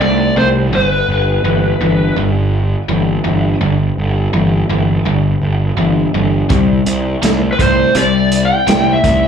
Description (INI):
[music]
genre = blues rock power trio and southern rock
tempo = 83 BPM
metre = 4/4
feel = straight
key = G major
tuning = A4 = 439 Hz
[part]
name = overdriven slide guitar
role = melody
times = 0.0-2.1, 7.5-9.3 s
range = B4 to G5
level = -15 LUFS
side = left 1 dB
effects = slapback echo
[part]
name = overdriven electric guitar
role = riff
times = 0.0-9.3 s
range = G2 to A3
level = -16 LUFS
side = left 1 dB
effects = none
[part]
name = fuzz picked electric bass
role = bass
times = 0.0-9.3 s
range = G1 to C2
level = -15 LUFS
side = right 1 dB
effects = overdrive
[part]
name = vintage drum kit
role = drums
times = 6.5-9.2 s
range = hi-hat, kick drum, snare drum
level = -17 LUFS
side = right 1 dB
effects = none
[sound]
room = light reverb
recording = live gig heard through the venue's PA, club reverb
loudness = -11 LUFS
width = side -7 dB against mid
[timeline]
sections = 0.0-9.3 A section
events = none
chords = 0.0 N.C.; 0.7 G; 6.5 C5